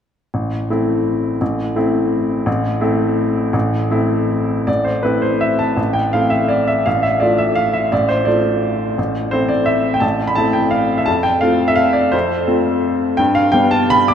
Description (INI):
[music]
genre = classical, piano waltz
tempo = 146-180 BPM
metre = 3/4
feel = rubato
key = A minor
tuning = A4 = 440 Hz
[part]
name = bright upright piano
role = solo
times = 0.3-14.1 s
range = A1 to D6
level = -14 LUFS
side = equal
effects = none
[sound]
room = wet cathedral reverb, RT60 5.2 s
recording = in a vast, echoing space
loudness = -14 LUFS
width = side -8 dB against mid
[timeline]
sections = 0.3-4.7 A section; 4.7-14.1 B section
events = none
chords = 0.3 Am; 6.9 Dm/A; 9.0 Am; 11.1 F; 13.2 G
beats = | 0.33 0.69 1.05 | 1.41 1.75 2.12 | 2.47 2.82 3.19 | 3.54 3.90 4.28 | 4.68 5.04 5.42 | 5.78 6.13 6.50 | 6.86 7.21 7.57 | 7.92 8.26 8.63 | 8.98 9.32 9.68 | 10.03 10.37 10.72 | 11.07 11.42 11.78 | 12.13 12.48 12.84 | 13.20 13.54 13.91